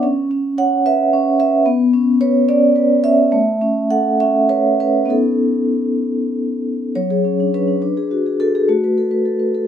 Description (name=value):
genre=classical, contemporary piece for solo vibraphone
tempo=64-74 BPM (dotted quarters)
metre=6/8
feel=rubato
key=unclear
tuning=A4 = 440 Hz
part: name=vibraphone with soft mallets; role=solo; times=0.0-9.7 s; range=F#3 to F#5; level=-14 LUFS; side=equal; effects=none
room=light reverb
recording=close, detailed microphones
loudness=-14 LUFS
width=side -9 dB against mid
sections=0.0-6.9 A section; 6.9-9.7 B section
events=none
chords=0.0 C#m7; 1.7 Bmadd9; 3.3 Aadd9; 5.1 B9; 6.9 F#sus2; 7.8 D; 8.7 Asus2